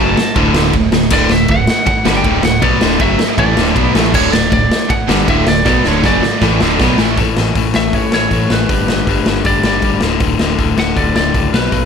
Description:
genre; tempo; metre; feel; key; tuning
punk rock; 158 BPM; 4/4; straight; D major; A4 = 442 Hz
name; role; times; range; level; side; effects
lightly driven lead guitar; melody; 0.0-11.9 s; B4 to A5; -18 LUFS; right 1 dB; none
cranked stack guitar; riff; 0.0-7.2 s; D2 to B3; -18 LUFS; right 14 dB; overdrive
heavy high-gain guitar; riff; 0.0-7.2 s; D2 to B3; -20 LUFS; right 2 dB; distortion
overdriven electric guitar; riff; 0.0-11.9 s; D2 to B3; -17 LUFS; left 10 dB; none
growling picked electric bass; bass; 0.0-11.9 s; D1 to C#2; -20 LUFS; right 1 dB; overdrive
raw garage drum kit; drums; 0.2-11.8 s; crash cymbal, hi-hat, kick drum, ride cymbal, snare drum; -15 LUFS; equal; none
room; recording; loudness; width
light reverb; none; -11 LUFS; side -6 dB against mid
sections
0.0-7.2 A section; 7.2-11.9 B section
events
drum fill 5.7-7.2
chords
0.0 D; 7.2 A; 8.7 G; 10.0 D5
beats
0.36 0.73 | 1.11 1.49 1.87 2.25 | 2.62 3.00 3.38 3.76 | 4.14 4.52 4.90 5.28 | 5.66 6.04 6.42 6.79 | 7.17 7.55 7.93 8.31 | 8.69 9.07 9.45 9.83 | 10.21 10.59 10.97 11.35 | 11.72

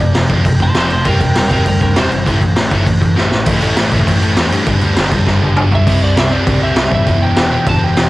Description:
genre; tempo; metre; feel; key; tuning
punk rock; 200 BPM; 4/4; straight; unclear; A4 = 439 Hz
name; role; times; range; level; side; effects
lightly driven lead guitar; melody; 0.0-2.3, 5.7-8.1 s; Bb4 to C6; -20 LUFS; right 2 dB; cassette tape, tape echo
distorted electric guitar; riff; 0.0-8.1 s; G2 to E4; -23 LUFS; right 8 dB; overdrive, cassette tape
overdriven semi-hollow guitar; riff; 0.0-8.1 s; E2 to C4; -18 LUFS; left 3 dB; cassette tape
growling picked electric bass; bass; 0.0-8.1 s; E1 to G2; -20 LUFS; equal; overdrive
raw garage drum kit; drums; 0.0-8.0 s; crash cymbal, kick drum, snare drum, toms; -13 LUFS; equal; cassette tape
room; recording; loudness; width
studio reverb; home recording on cassette; -10 LUFS; side -18 dB against mid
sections
0.0-3.5 A section; 3.5-5.9 B section; 5.9-8.1 C section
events
lead electric guitar solo 0.0-3.5; drum fill 3.2-3.5, 5.3-5.9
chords
0.0 F; 1.1 C/E; 2.3 A5; 3.5 A; 4.7 G; 5.9 C; 7.1 Em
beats
0.16 0.46 0.76 | 1.06 1.36 1.66 1.96 | 2.27 2.57 2.87 3.17 | 3.47 3.77 4.07 4.37 | 4.67 4.97 5.27 5.57 | 5.87 6.17 6.47 6.77 | 7.07 7.37 7.67 7.97

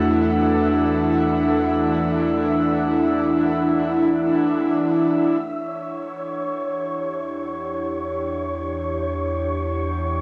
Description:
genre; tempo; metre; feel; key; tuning
ambient; free time; none; none; E dorian; A4 = 442 Hz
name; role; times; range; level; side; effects
airy breathy pad; sustained chords; 0.0-10.2 s; E3 to F#5; -23 LUFS; equal; chorus, cassette tape
muted felt-like synth keys; arpeggios; 0.0-5.4 s; A3 to F#5; -31 LUFS; equal; chorus, cassette tape, analog delay
deep rumbling drone; bass; 0.0-10.2 s; E2; -33 LUFS; equal; built-in reverb
wind-like tuned noise texture; texture; 0.0-10.2 s; C#5 to E6; -30 LUFS; equal; built-in reverb, cassette tape, plate reverb
room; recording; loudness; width
wet studio reverb, RT60 0.5 s; home recording on cassette; -22 LUFS; mono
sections
0.0-5.4 A section; 5.4-10.2 A section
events
none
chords
0.0 Dadd9/E; 5.4 Em9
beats
free time

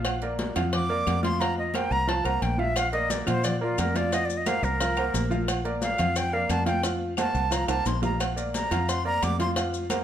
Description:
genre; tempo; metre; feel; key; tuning
latin, salsa; 177 BPM; 4/4; straight; Bb major; A4 = 440 Hz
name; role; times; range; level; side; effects
clear concert grand piano; accompaniment; 0.0-10.0 s; F3 to F5; -30 LUFS; right 1 dB; none
fingered electric bass; bass; 0.0-10.0 s; Bb1 to Bb2; -30 LUFS; equal; none
cowbell; percussion; 0.0-10.0 s; none; -35 LUFS; left 4 dB; none
agogo bells and timbales; percussion; 0.1-10.0 s; none; -35 LUFS; right 8 dB; none
claves; percussion; 0.1-10.0 s; none; -40 LUFS; left 6 dB; none
congas; percussion; 0.1-10.0 s; none; -34 LUFS; left 1 dB; none
breathy bright concert flute; melody; 0.7-9.5 s; F4 to D6; -28 LUFS; equal; plate reverb
maracas; percussion; 2.8-10.0 s; none; -40 LUFS; left 8 dB; none
room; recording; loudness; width
moderate large studio reverb, RT60 0.9 s; none; -23 LUFS; side -10 dB against mid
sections
0.0-10.0 A section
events
flute solo 0.0-10.0; drum fill 7.7-8.2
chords
0.1 Bb; 1.4 Fsus4; 2.8 Bb; 4.1 Fsus4; 5.5 Bb; 6.8 Fsus4; 8.2 Bb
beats
| 0.05 0.39 0.73 1.07 | 1.41 1.75 2.09 2.43 | 2.77 3.10 3.44 3.78 | 4.12 4.46 4.80 5.14 | 5.48 5.82 6.16 6.50 | 6.84 7.18 7.52 7.86 | 8.20 8.54 8.88 9.22 | 9.56 9.90

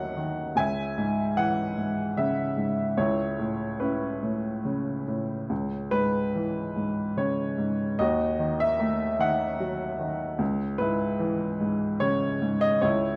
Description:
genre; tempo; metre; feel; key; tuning
classical, lyrical solo piano; 73 BPM; 3/4; rubato; C# minor; A4 = 440 Hz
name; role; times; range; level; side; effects
clear upright piano; solo; 0.0-13.2 s; C#2 to G#5; -27 LUFS; equal; none
room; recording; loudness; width
moderate recital hall reverb, RT60 1.4 s; dark, warm production; -27 LUFS; mono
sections
0.0-13.2 A section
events
none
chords
0.0 D#dim; 0.6 C#m; 3.0 Aadd9/C#; 5.5 C#m; 8.0 D#dim; 10.4 C#m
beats
| 0.56 1.38 2.18 | 2.98 3.81 4.66 | 5.51 6.35 7.18 | 8.00 8.81 9.61 | 10.40 11.21 12.03 | 12.85

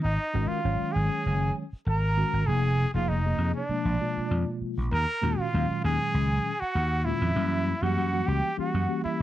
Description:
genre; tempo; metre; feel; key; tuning
jazz; 98 BPM; 4/4; straight; Eb minor; A4 = 440 Hz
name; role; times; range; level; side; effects
trumpet with straight mute; melody; 0.0-9.2 s; D4 to Bb4; -31 LUFS; equal; none
mellow tine electric piano; accompaniment; 0.0-9.2 s; Bb2 to Db5; -30 LUFS; left 1 dB; medium stereo tremolo, wide subtle chorus
vintage slap bass; bass; 0.0-9.2 s; F1 to Gb2; -26 LUFS; equal; none
silver concert flute; second line; 0.1-9.2 s; D5 to Bb5; -35 LUFS; right 5 dB; none
room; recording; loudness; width
little or no reverb; dry, close 1970s-style studio recording; -24 LUFS; side -13 dB against mid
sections
0.0-9.2 A section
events
none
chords
0.0 Absus2; 2.5 Fm7; 3.7 Bb7b9; 4.9 Ebm11; 7.4 Gb7b9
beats
| 0.04 0.65 1.26 1.87 | 2.48 3.09 3.70 4.31 | 4.92 5.53 6.14 6.75 | 7.36 7.97 8.58 9.19

